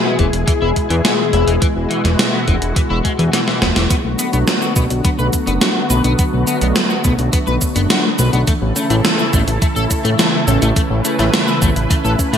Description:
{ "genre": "synthwave", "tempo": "105 BPM", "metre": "4/4", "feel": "straight", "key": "unclear", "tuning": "A4 = 443 Hz", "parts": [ { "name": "soft octave-layered synth lead", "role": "melody", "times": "0.0-3.3 s", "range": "F#4 to G#4", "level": "-22 LUFS", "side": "left 6 dB", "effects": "chorus, phaser, digital delay" }, { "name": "analog string pad", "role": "sustained chords", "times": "0.0-12.4 s", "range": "B2 to B4", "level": "-20 LUFS", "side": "equal", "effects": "ensemble chorus, sidechain pumping" }, { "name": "electric guitar at the edge of break-up", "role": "riff", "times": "0.0-12.4 s", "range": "E3 to B4", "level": "-24 LUFS", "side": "left 3 dB", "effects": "analog chorus, low-pass filter, ping-pong delay" }, { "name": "fat analog bass", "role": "bass", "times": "0.2-12.4 s", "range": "E1 to A2", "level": "-17 LUFS", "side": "equal", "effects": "none" }, { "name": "electronic kick drum", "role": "drums", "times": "0.2-12.3 s", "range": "none", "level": "-17 LUFS", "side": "equal", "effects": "none" }, { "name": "gated 80s digital drum machine", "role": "drums", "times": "0.2-12.4 s", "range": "hi-hat, shaker, snare drum", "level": "-18 LUFS", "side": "equal", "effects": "gated reverb, gated reverb snare" }, { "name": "thumb-piano-like synth pluck", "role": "arpeggios", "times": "3.9-12.4 s", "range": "E3 to E4", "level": "-23 LUFS", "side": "left 2 dB", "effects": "chorus, vintage 12-bit sampler grit, ping-pong delay" } ], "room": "moderate plate reverb, RT60 1.5 s", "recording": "bright 1980s-style digital production", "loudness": "-13 LUFS", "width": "side -8 dB against mid", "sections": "0.0-3.9 A section; 3.9-12.4 B section", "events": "drum fill 3.3-3.9; filter sweep on synth arpeggio sound 3.9-12.4", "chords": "0.0 E; 3.9 Bm7; 8.5 A" }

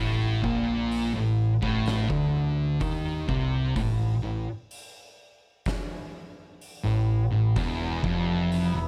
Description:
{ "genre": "stoner and doom metal", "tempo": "63 BPM", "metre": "4/4", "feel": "straight", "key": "unclear", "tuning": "A4 = 439 Hz", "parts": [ { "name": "thick fuzz guitar", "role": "riff", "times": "0.0-8.9 s", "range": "E2 to D#3", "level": "-30 LUFS", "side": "equal", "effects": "distortion" }, { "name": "thick fuzz guitar", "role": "riff", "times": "0.0-8.9 s", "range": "E2 to D#3", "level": "-30 LUFS", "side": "equal", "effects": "distortion" }, { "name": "growling picked electric bass", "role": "bass", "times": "0.0-8.9 s", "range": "E1 to D#2", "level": "-34 LUFS", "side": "equal", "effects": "overdrive" }, { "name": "oversized low-tuned drum kit", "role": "drums", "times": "0.4-8.7 s", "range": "hi-hat, kick drum, snare drum", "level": "-37 LUFS", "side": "equal", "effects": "none" }, { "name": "metallic inharmonic drone", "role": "sustained chords", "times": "8.0-8.9 s", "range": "E3 to E5", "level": "-39 LUFS", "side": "equal", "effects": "chorus, built-in reverb, phaser" } ], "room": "moderate small room reverb, RT60 0.5 s", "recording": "none", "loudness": "-26 LUFS", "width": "mono", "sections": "0.0-8.9 A section", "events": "none", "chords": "0.0 Amadd11; 7.6 E5" }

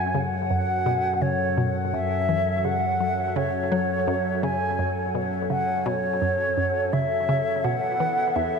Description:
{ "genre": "ambient, sequencer-driven space music", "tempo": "84 BPM", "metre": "4/4", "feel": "straight", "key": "F# minor", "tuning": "A4 = 440 Hz", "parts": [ { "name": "mellow silver concert flute", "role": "melody", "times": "0.0-8.6 s", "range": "C#5 to G#5", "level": "-24 LUFS", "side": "equal", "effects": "ping-pong delay" }, { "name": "lush unison pad", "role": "sustained chords", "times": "0.0-8.6 s", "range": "E3 to A4", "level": "-32 LUFS", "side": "right 1 dB", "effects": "chorus" }, { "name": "analog drone", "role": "bass", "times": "0.0-8.6 s", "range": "E2 to F#2", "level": "-30 LUFS", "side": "equal", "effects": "chorus, phaser" }, { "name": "hollow square pluck", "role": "riff", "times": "0.1-8.5 s", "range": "E2 to F#3", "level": "-28 LUFS", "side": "equal", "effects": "chorus, phaser, ping-pong delay" } ], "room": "wet plate reverb, RT60 3.0 s", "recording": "echo-heavy mix", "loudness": "-22 LUFS", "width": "side -5 dB against mid", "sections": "0.0-8.6 A section", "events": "fade-in on analog synth pad 0.0-8.6", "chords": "0.0 F#m; 7.6 Esus4" }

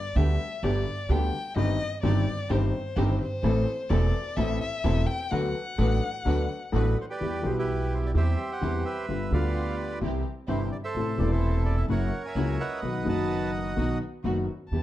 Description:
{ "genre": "tango", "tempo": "128 BPM", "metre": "4/4", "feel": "rubato", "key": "unclear", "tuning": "A4 = 440 Hz", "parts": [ { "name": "rich violin", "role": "second line", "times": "0.0-7.0, 14.7-14.8 s", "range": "C5 to A5", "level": "-33 LUFS", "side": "left 4 dB", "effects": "none" }, { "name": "dark upright piano", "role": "accompaniment", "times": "0.2-14.8 s", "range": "E1 to A4", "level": "-29 LUFS", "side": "left 3 dB", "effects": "none" }, { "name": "warm studio string section", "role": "stabs", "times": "0.2-14.8 s", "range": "A#3 to B4", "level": "-37 LUFS", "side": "right 3 dB", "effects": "none" }, { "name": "upright bass", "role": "bass", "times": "0.2-14.8 s", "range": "E1 to E2", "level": "-27 LUFS", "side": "right 1 dB", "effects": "none" }, { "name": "bandoneon", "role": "melody", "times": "6.8-14.0 s", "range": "E4 to A5", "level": "-33 LUFS", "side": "right 3 dB", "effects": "none" } ], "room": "light reverb", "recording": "dark, warm production", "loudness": "-25 LUFS", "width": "side -14 dB against mid", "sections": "0.0-7.2 A section; 7.2-14.8 B section", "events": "violin solo 0.0-7.2", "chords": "0.0 G; 1.6 Cm/G; 3.4 Am; 5.3 D6; 7.2 Em; 8.1 C/E; 9.1 G7; 10.0 C; 11.0 Am; 11.9 F#7; 12.8 B" }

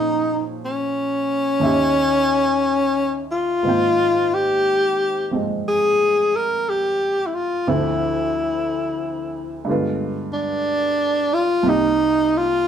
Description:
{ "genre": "jazz ballad", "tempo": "60 BPM", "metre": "4/4", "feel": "swing 66% on 8ths", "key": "unclear", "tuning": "A4 = 440 Hz", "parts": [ { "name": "breathy tenor saxophone", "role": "melody", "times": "0.0-12.7 s", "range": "Db4 to Bb4", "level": "-18 LUFS", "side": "left 1 dB", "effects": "none" }, { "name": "clear upright piano", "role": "accompaniment", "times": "0.0-12.7 s", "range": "C2 to G5", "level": "-25 LUFS", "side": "right 3 dB", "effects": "none" } ], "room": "moderate studio reverb, RT60 0.7 s", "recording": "band playing live in one room", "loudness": "-18 LUFS", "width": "side -8 dB against mid", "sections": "0.0-12.7 A section", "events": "none", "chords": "0.0 Bbm7; 1.6 Eb7b9; 3.6 Abmaj7; 7.7 Dm9; 9.7 G7b9; 11.6 Cm7" }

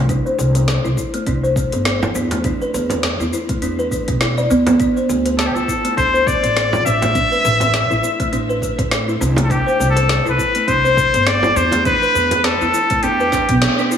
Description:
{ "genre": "organic downtempo", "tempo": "102 BPM", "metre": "4/4", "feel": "swing 56% on 16ths", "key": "unclear", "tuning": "A4 = 440 Hz", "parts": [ { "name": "buzzing kalimba", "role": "arpeggios", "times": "0.0-14.0 s", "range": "A3 to D5", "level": "-19 LUFS", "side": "equal", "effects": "low-pass filter, diffuse ambient delay" }, { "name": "upright bass", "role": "bass", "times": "0.0-13.6 s", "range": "E1 to A2", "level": "-20 LUFS", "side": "equal", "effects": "sidechain pumping" }, { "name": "afro-pop drum kit", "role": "drums", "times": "0.1-14.0 s", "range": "hi-hat, shaker, snare drum", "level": "-24 LUFS", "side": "left 1 dB", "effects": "none" }, { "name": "electronic kick drum", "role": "drums", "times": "0.1-13.6 s", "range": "none", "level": "-24 LUFS", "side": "equal", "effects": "none" }, { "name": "frame drum", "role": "percussion", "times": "2.0-12.4 s", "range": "none", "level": "-25 LUFS", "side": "right 3 dB", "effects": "none" }, { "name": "trumpet with straight mute", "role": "melody", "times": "5.4-13.6 s", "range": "G4 to E5", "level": "-16 LUFS", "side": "left 2 dB", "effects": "diffuse ambient delay" } ], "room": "moderate plate reverb, RT60 1.4 s, studio ambience", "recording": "dreamy mix soaked in reverb, small room ambience", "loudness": "-14 LUFS", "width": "side -8 dB against mid", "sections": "0.0-14.0 A section", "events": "band accent 13.6", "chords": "0.1 Cadd9; 2.4 E5; 4.8 D5; 7.2 A5; 9.5 Cadd9; 11.9 Em7" }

